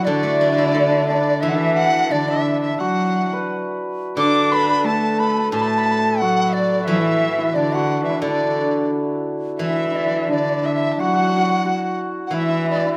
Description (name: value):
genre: chinese traditional, Chinese chamber ensemble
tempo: 88 BPM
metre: 2/4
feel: rubato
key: D gong mode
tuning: A4 = 439 Hz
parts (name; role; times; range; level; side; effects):
- large dizi; melody; 0.0-13.0 s; D5 to D6; -24 LUFS; equal; none
- dark erhu; second line; 0.0-13.0 s; D5 to D6; -28 LUFS; equal; none
- hammered dulcimer; second line; 0.0-13.0 s; D4 to D5; -26 LUFS; equal; none
- rich cello; second line; 0.0-13.0 s; D3 to D4; -26 LUFS; equal; none
- steel-string zither; accompaniment; 0.0-13.0 s; A2 to A4; -27 LUFS; equal; none
room: moderate scoring stage reverb, RT60 2.1 s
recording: close, detailed microphones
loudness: -19 LUFS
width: mono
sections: 0.0-9.6 A section; 9.6-13.0 B section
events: none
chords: none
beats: | 0.07 0.74 | 1.42 2.10 | 2.79 3.47 | 4.16 4.84 | 5.52 6.19 | 6.86 7.54 | 8.22 8.91 | 9.61 10.30 | 10.98 11.66 | 12.33